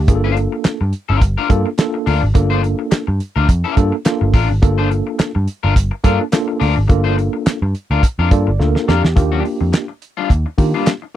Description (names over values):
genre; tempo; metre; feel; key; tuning
funk; 106 BPM; 4/4; swing 56% on 16ths; G minor; A4 = 437 Hz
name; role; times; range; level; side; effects
tine electric piano; stabs; 0.0-10.9 s; Bb3 to D5; -20 LUFS; right 1 dB; overdrive, fast stereo tremolo
vintage muted picked electric bass; bass; 0.0-10.7 s; G1 to Eb3; -16 LUFS; equal; none
electric guitar at the edge of break-up; accompaniment; 0.1-11.1 s; G3 to C5; -21 LUFS; left 10 dB; wide subtle chorus
damped 70s drum kit; drums; 0.1-11.0 s; handclaps, hi-hat, kick drum, snare drum; -13 LUFS; equal; none
room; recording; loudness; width
little or no reverb; dry, close 1970s-style studio recording; -14 LUFS; side -12 dB against mid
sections
0.0-9.2 A section; 9.2-11.2 B section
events
tine electric piano fill 8.0-9.2; drum fill 8.6-9.2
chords
0.0 Gm7; 9.2 Ebmaj9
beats
| 0.08 0.65 1.22 1.79 | 2.35 2.92 3.49 4.06 | 4.62 5.19 5.76 6.33 | 6.89 7.46 8.03 8.60 | 9.17 9.73 10.30 10.87